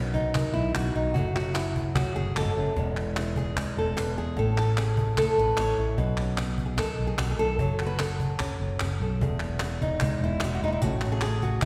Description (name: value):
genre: flamenco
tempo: 149 BPM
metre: 4/4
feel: straight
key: E major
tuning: A4 = 440 Hz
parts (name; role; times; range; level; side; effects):
- flamenco guitar; melody; 0.0-11.7 s; E2 to C#5; -31 LUFS; equal; none
- fretless electric bass; bass; 0.0-11.7 s; E1 to E2; -32 LUFS; equal; none
- cajon; percussion; 0.1-11.7 s; none; -34 LUFS; equal; none
- palmas hand claps; percussion; 0.3-11.7 s; none; -37 LUFS; equal; none
room: wet scoring stage reverb, RT60 1.7 s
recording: recorded in a church or concert hall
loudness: -27 LUFS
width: mono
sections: 0.0-11.7 A section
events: none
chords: 0.0 B; 1.2 F#m; 2.8 E; 4.4 A; 6.0 Badd9; 7.6 F#m; 9.2 E; 10.8 A